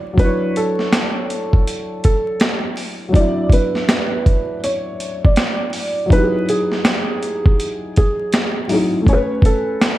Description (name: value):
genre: lo-fi hip hop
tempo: 81 BPM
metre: 4/4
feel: swing 65% on 16ths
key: D major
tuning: A4 = 439 Hz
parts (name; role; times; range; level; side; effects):
- dark upright piano; accompaniment; 0.0-10.0 s; F#3 to G#5; -22 LUFS; left 1 dB; cassette tape, low-pass filter
- felt-muted upright piano; melody; 0.2-10.0 s; G#4 to D5; -22 LUFS; right 2 dB; low-pass filter
- boom bap sampler-style drum kit; drums; 0.2-10.0 s; hi-hat, kick drum, snare drum; -16 LUFS; equal; vintage 12-bit sampler grit
room: light reverb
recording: vinyl crackle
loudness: -15 LUFS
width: side -15 dB against mid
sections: 0.2-10.0 A section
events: none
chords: 0.2 Dmaj9; 6.1 Emaj9; 9.1 Amaj9